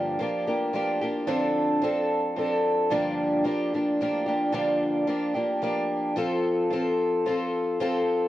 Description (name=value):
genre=rock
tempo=110 BPM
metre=3/4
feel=straight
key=G minor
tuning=A4 = 441 Hz
part: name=picked twelve-string acoustic guitar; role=solo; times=0.0-8.3 s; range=G2 to A4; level=-23 LUFS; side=equal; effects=none
room=moderate studio reverb, RT60 0.7 s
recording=worn, warbling old tape, cassette tape, warbly pitch drift, nothing above 10.3 kHz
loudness=-23 LUFS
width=side -14 dB against mid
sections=0.0-8.3 A section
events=none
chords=0.0 Gm7; 1.3 Dm7; 2.9 Gm7; 6.2 F